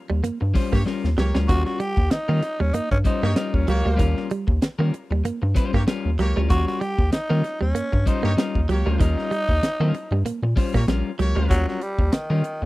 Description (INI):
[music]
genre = funk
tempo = 96 BPM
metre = 4/4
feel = swing 56% on 16ths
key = Eb mixolydian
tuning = A4 = 441 Hz
[part]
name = electric guitar at the edge of break-up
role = accompaniment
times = 0.1-12.7 s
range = G3 to C5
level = -29 LUFS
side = left 5 dB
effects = spring reverb
[part]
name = direct-recorded clean electric guitar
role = riff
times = 0.1-11.5 s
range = Eb3 to Bb3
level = -27 LUFS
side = right 5 dB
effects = none
[part]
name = rubbery square bass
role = bass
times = 0.1-12.7 s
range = Bb1 to Eb3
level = -21 LUFS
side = equal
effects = none
[part]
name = tight funk drum kit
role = drums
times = 0.2-12.6 s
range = hi-hat, kick drum, snare drum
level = -22 LUFS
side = equal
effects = none
[part]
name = warm horn section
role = second line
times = 0.7-11.6 s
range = Bb3 to Db5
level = -29 LUFS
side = right 2 dB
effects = none
[part]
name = growling tenor saxophone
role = melody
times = 1.5-12.7 s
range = Eb3 to G4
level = -26 LUFS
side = equal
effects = none
[sound]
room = little or no reverb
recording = dry, close 1970s-style studio recording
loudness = -19 LUFS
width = side -18 dB against mid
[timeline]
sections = 0.0-11.5 A section; 11.5-12.7 A section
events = drum fill 0.9-1.5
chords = 0.0 Eb9